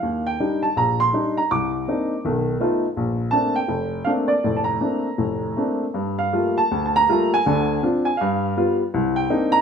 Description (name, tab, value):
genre	solo jazz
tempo	162 BPM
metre	4/4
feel	swing 63% on 8ths, rubato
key	Bb major, G minor from 6.0 s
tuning	A4 = 440 Hz
part	warm upright piano	solo	0.0-9.6 s	F1 to D6	-19 LUFS	equal	none
room	moderate large studio reverb, RT60 1.2 s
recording	minimal, uncompressed stereo recording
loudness	-19 LUFS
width	side -7 dB against mid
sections	0.0-6.0 A section; 6.0-9.6 B section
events	none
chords	0.0 Ebmaj7; 1.5 Cm9; 2.2 B7#11; 3.0 Bbmaj9; 6.0 Gm9; 7.5 Dm7b5; 8.2 G7; 8.9 Cm9